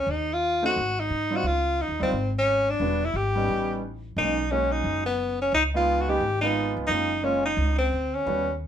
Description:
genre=jazz, small-group swing and bop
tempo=176 BPM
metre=4/4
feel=swing 63% on 8ths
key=unclear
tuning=A4 = 438 Hz
part: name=breathy tenor saxophone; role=melody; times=0.0-8.5 s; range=B3 to G4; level=-24 LUFS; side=left 1 dB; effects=none
part: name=upright bass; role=bass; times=0.0-8.7 s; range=E1 to Ab2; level=-30 LUFS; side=equal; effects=none
part: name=warm baby grand piano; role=accompaniment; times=0.6-8.5 s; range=G3 to G4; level=-29 LUFS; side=right 2 dB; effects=none
room=moderate studio reverb, RT60 0.6 s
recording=band playing live in one room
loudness=-22 LUFS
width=side -9 dB against mid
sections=0.0-8.7 A section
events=none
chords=0.1 Ebmadd9; 0.8 Ab; 1.4 Dbmaj9; 2.8 Em7; 3.5 A9; 4.2 Bmaj13; 5.5 Db9; 6.9 Gbmaj9

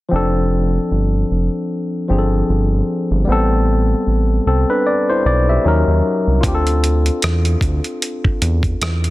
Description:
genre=R&B, neo-soul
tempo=76 BPM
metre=4/4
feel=swing 56% on 16ths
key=unclear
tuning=A4 = 440 Hz
part: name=barky tine electric piano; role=accompaniment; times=0.1-9.1 s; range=F3 to E5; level=-18 LUFS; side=left 2 dB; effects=overdrive
part: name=round analog bass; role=bass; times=0.1-9.1 s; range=F1 to E2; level=-16 LUFS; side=equal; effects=none
part: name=dusty soul sampler-style drum kit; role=drums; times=6.4-9.1 s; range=hi-hat, kick drum, rim click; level=-19 LUFS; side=equal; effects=soft clipping on snare
room=digital ambience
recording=dense, heavily limited modern master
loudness=-14 LUFS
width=side -18 dB against mid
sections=0.1-9.1 A section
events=none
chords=0.1 F6; 3.3 Am9; 5.6 D#m7; 6.4 Dm7

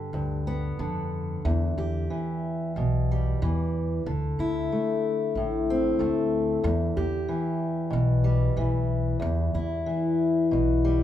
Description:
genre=acoustic folk-pop ballad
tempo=92 BPM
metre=4/4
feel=straight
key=E minor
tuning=A4 = 440 Hz
part: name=fingerpicked steel-string acoustic guitar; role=accompaniment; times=0.0-11.0 s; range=E2 to G4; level=-26 LUFS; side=left 1 dB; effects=none
part: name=upright bass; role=bass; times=0.1-11.0 s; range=A1 to F2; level=-27 LUFS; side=left 1 dB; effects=none
room=moderate large studio reverb, RT60 1.2 s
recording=band playing live in one room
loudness=-24 LUFS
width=side -11 dB against mid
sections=0.0-11.0 A section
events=none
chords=0.0 G; 1.4 Em7; 4.1 D5; 6.6 Em7

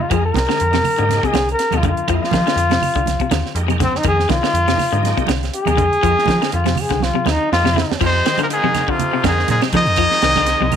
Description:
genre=afrobeat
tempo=122 BPM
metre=4/4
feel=swing 55% on 16ths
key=F dorian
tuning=A4 = 436 Hz
part: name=bright trombone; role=melody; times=0.0-8.0 s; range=C4 to Bb4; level=-19 LUFS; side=left 2 dB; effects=none
part: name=electric guitar at the edge of break-up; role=arpeggios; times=0.0-10.8 s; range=C3 to F3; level=-23 LUFS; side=left 12 dB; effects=spring reverb
part: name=metallic FM bass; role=bass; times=0.0-10.8 s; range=C2 to F3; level=-20 LUFS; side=equal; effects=none
part: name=bright tonewheel organ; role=accompaniment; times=0.1-10.6 s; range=Ab3 to G5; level=-29 LUFS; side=equal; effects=slow rotary speaker, chorus vibrato
part: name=tight funk drum kit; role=drums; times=0.1-10.8 s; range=crash cymbal, hi-hat, kick drum, snare drum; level=-23 LUFS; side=right 5 dB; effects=none
part: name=claves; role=percussion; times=0.1-10.8 s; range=none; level=-32 LUFS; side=right 17 dB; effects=none
part: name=congas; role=percussion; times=0.3-10.8 s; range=none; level=-25 LUFS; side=right 11 dB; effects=none
part: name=raspy baritone saxophone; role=second line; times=8.0-10.8 s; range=F2 to Eb3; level=-27 LUFS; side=equal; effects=none
part: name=bright trumpet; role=melody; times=8.1-10.8 s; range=F4 to Eb5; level=-17 LUFS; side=left 2 dB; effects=none
part: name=raspy tenor saxophone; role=second line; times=8.1-10.8 s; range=C3 to Ab3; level=-26 LUFS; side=right 12 dB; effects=none
room=light reverb, small room reverb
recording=1960s-style stereo with parts hard left and right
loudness=-14 LUFS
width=side -8 dB against mid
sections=0.0-8.0 A section; 8.0-10.8 B section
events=trombone solo 0.0-8.0; drum fill 7.0-8.0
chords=0.0 Fm11

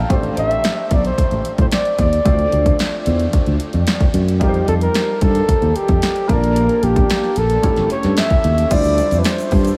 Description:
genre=polished 1980s jazz-funk pop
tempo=111 BPM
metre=4/4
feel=straight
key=A phrygian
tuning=A4 = 440 Hz
part: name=warm concert grand piano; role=accompaniment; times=0.0-9.8 s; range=G3 to Bb5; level=-26 LUFS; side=equal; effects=analog chorus
part: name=fingered electric bass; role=bass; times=0.0-9.7 s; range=G1 to A2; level=-20 LUFS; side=equal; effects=none
part: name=breathy flugelhorn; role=melody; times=0.1-9.8 s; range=G4 to E5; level=-22 LUFS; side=equal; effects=none
part: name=punchy analog drum machine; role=drums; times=0.1-9.8 s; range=crash cymbal, hi-hat, kick drum, snare drum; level=-21 LUFS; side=equal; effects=none
part: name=egg shaker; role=percussion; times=8.7-9.8 s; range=none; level=-40 LUFS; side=equal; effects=none
room=moderate huge ambient reverb, RT60 8.8 s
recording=dreamy mix soaked in reverb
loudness=-16 LUFS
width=mono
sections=0.0-8.7 A section; 8.7-9.8 B section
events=none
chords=0.1 Am11; 2.3 Dm7; 4.4 F9; 6.3 Bbmaj7; 7.6 A7; 8.7 Dm11

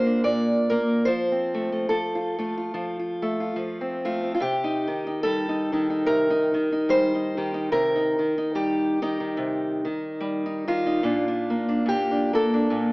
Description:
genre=folk, solo fingerstyle acoustic guitar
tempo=72 BPM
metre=4/4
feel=swing 57% on 8ths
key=C dorian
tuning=A4 = 440 Hz
part: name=fingerpicked steel-string acoustic guitar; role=solo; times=0.0-12.9 s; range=Bb2 to D5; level=-22 LUFS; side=equal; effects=none
room=moderate large studio reverb, RT60 1.2 s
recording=AM radio sound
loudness=-22 LUFS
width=side -25 dB against mid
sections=0.0-12.9 A section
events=none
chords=0.0 Bb; 1.1 F; 4.4 Cm7; 11.1 Bb

